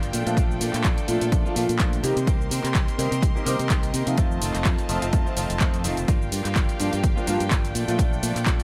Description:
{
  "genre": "filtered disco house",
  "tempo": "126 BPM",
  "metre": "4/4",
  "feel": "swing 55% on 16ths",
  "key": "unclear",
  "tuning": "A4 = 441 Hz",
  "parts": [
    { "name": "clear studio violin section", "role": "sustained chords", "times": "0.0-8.6 s", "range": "F4 to C6", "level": "-36 LUFS", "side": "equal", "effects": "sidechain pumping" },
    { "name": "direct-recorded clean electric guitar", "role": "riff", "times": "0.0-8.6 s", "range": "Eb3 to G4", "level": "-35 LUFS", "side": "equal", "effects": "sidechain pumping" },
    { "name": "modern bright fingered electric bass", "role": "bass", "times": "0.0-8.6 s", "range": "F1 to C3", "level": "-30 LUFS", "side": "equal", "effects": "sidechain pumping" },
    { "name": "punchy analog drum machine", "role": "drums", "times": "0.0-8.6 s", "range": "handclaps, hi-hat, shaker", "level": "-32 LUFS", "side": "equal", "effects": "overdrive, sidechain pumping on hats, sidechain pumping on perc" },
    { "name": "clear concert grand piano", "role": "accompaniment", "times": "0.3-8.6 s", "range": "F3 to G4", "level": "-31 LUFS", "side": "equal", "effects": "phaser, sidechain pumping" },
    { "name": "electronic kick drum", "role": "drums", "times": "0.4-8.6 s", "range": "none", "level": "-25 LUFS", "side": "equal", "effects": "overdrive" }
  ],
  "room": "digital ambience",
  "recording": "none",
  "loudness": "-23 LUFS",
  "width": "mono",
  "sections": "0.0-8.6 A section",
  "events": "none",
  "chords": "0.1 Bbmaj7; 2.0 Cm7; 4.2 F7; 6.1 Gm7; 7.7 Bbmaj7",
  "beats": "| 0.37 0.84 1.32 1.80 | 2.27 2.75 3.23 3.70 | 4.18 4.65 5.13 5.61 | 6.08 6.56 7.03 7.51 | 7.99 8.46"
}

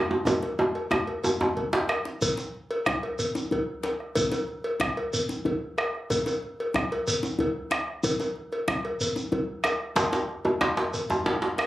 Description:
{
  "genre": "west african traditional, West African drum ensemble",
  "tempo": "124 BPM (dotted quarters)",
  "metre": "12/8",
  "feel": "straight",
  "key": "none",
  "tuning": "none",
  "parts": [
    { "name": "bombo", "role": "percussion", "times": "0.1-11.7 s", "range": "none", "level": "-29 LUFS", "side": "right 1 dB", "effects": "none" },
    { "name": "djembe", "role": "percussion", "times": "0.1-1.9, 10.0-11.6 s", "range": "none", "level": "-25 LUFS", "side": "right 1 dB", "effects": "none" },
    { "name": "cowbell", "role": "percussion", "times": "0.3-11.7 s", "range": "none", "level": "-30 LUFS", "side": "equal", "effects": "none" },
    { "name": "djembe", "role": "percussion", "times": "0.3-11.7 s", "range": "none", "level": "-32 LUFS", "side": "left 2 dB", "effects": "none" },
    { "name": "shekere", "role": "percussion", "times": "0.3-11.2 s", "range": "none", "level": "-32 LUFS", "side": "right 1 dB", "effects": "none" }
  ],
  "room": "wet studio reverb, RT60 0.5 s",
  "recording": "recorded on a phone in the room, club reverb",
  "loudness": "-25 LUFS",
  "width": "side -15 dB against mid",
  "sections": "0.0-2.2 A section; 2.2-11.7 B section",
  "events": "drum fill 0.3-2.2",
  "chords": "none",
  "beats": "| 0.27 0.75 1.24 1.73 | 2.21 2.70 3.19 3.67 | 4.16 4.65 5.13 5.62 | 6.10 6.59 7.07 7.56 | 8.04 8.52 9.01 9.49 | 9.97 10.46 10.94 11.42"
}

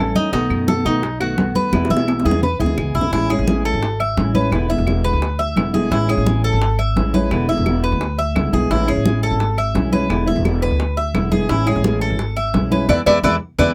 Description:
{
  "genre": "latin, Cuban son and guajira",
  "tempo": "172 BPM",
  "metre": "4/4",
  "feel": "straight",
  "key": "A major",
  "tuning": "A4 = 442 Hz",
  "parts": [
    { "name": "nylon-string guitar", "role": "accompaniment", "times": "0.0-13.7 s", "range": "B2 to F#4", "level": "-24 LUFS", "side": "equal", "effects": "none" },
    { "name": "Cuban tres", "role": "arpeggios", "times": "0.0-13.7 s", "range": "D#4 to E5", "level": "-24 LUFS", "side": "equal", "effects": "none" },
    { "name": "upright bass", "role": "bass", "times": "0.0-13.7 s", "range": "E1 to F#2", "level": "-23 LUFS", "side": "equal", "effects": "none" },
    { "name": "bongos", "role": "percussion", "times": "0.2-13.7 s", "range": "none", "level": "-28 LUFS", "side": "equal", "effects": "none" },
    { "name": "congas", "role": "percussion", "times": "0.2-13.7 s", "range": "none", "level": "-25 LUFS", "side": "equal", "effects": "none" },
    { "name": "claves", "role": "percussion", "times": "0.5-13.7 s", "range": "none", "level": "-33 LUFS", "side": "equal", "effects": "none" }
  ],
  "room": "light reverb",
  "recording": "close, detailed microphones",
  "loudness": "-18 LUFS",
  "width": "mono",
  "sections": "0.0-3.1 A section; 3.1-13.7 B section",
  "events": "drum fill 1.7-3.1, 12.9-13.7; band accent 12.9-13.7",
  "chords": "0.3 B7; 1.7 E; 3.1 Amaj7; 4.5 E7; 5.9 Amaj7; 7.3 E7; 8.7 Amaj7; 10.1 E7; 11.5 Amaj7; 12.9 E7",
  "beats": "| 0.33 0.68 1.03 1.38 | 1.73 2.08 2.43 2.78 | 3.13 3.48 3.82 4.17 | 4.52 4.87 5.22 5.57 | 5.92 6.27 6.62 6.96 | 7.31 7.66 8.01 8.36 | 8.71 9.05 9.40 9.75 | 10.10 10.45 10.80 11.15 | 11.50 11.85 12.19 12.54 | 12.89 13.24 13.59"
}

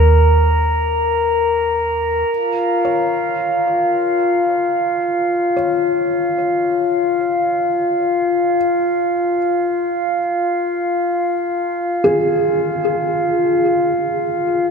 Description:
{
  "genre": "ambient",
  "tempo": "free time",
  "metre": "none",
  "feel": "none",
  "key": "unclear",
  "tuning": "A4 = 438 Hz",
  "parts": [
    { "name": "round analog bass", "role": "bass", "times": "0.0-2.2 s", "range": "Eb2", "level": "-16 LUFS", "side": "equal", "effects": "none" },
    { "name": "glass harmonica", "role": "texture", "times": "0.0-14.7 s", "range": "F4 to Bb5", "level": "-16 LUFS", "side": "left 1 dB", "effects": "none" },
    { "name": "felt-muted upright piano", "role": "arpeggios", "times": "2.8-14.7 s", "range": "Ab4 to Db5", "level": "-22 LUFS", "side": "equal", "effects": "ping-pong delay" }
  ],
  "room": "wet huge ambient reverb, RT60 8.0 s",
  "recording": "none",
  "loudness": "-15 LUFS",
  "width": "side -5 dB against mid",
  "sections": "0.0-2.3 A section; 2.3-14.7 B section",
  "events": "fade-in on felt piano 2.3-14.7",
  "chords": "0.0 Eb5; 2.3 Fm",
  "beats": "free time"
}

